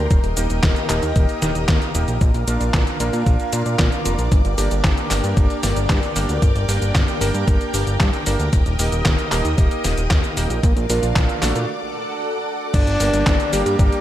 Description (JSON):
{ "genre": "italo disco", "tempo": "114 BPM", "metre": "4/4", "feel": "straight", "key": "G minor", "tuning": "A4 = 443 Hz", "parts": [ { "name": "string machine, full ensemble", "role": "sustained chords", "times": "0.0-14.0 s", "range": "A4 to Eb6", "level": "-26 LUFS", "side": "equal", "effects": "phaser, ensemble chorus, shimmer reverb" }, { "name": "clear electric grand piano", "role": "stabs", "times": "0.0-14.0 s", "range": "A3 to Bb4", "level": "-26 LUFS", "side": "right 2 dB", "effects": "ping-pong delay, shimmer reverb" }, { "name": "fat analog bass", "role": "bass", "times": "0.0-13.9 s", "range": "Eb1 to Bb2", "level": "-22 LUFS", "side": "equal", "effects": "none" }, { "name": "detuned 8-bit digital drum machine", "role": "drums", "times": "0.1-14.0 s", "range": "cabasa, crash cymbal, handclaps, hi-hat, snare drum", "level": "-24 LUFS", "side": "equal", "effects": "gated reverb" }, { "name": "electronic kick drum", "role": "drums", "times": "0.1-13.9 s", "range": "none", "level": "-17 LUFS", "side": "equal", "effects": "none" }, { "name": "breathy alto saxophone", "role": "melody", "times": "12.7-14.0 s", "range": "G3 to D4", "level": "-21 LUFS", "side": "left 1 dB", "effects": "ping-pong delay, shimmer reverb" } ], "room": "light reverb, digital ambience", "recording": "none", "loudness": "-16 LUFS", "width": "side -12 dB against mid", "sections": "0.0-12.7 A section; 12.7-14.0 B section", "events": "break 11.7-12.7", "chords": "0.1 Eb; 2.2 Bb; 4.3 Gm; 8.5 Eb; 10.6 Bb; 11.7 D; 12.7 Gm", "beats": "| 0.11 0.63 1.16 1.69 | 2.21 2.74 3.27 3.79 | 4.32 4.84 5.37 5.90 | 6.42 6.95 7.47 8.00 | 8.53 9.05 9.58 10.11 | 10.63 11.16 11.69 12.21 | 12.74 13.27 13.79" }